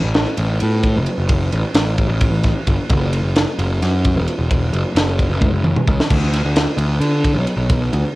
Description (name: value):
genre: math rock and midwest emo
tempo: 262 BPM (eighths)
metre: 7/8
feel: straight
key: unclear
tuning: A4 = 436 Hz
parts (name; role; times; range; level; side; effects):
- fuzz picked electric bass; bass; 0.0-8.0 s; E1 to D3; -17 LUFS; equal; overdrive
- crisp fusion drum kit; drums; 0.1-8.0 s; crash cymbal, kick drum, ride cymbal, snare drum, toms; -18 LUFS; equal; cassette tape
room: little or no reverb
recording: home recording on cassette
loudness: -15 LUFS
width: side -19 dB against mid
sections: 0.0-8.2 A section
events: drum fill 5.4-6.1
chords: none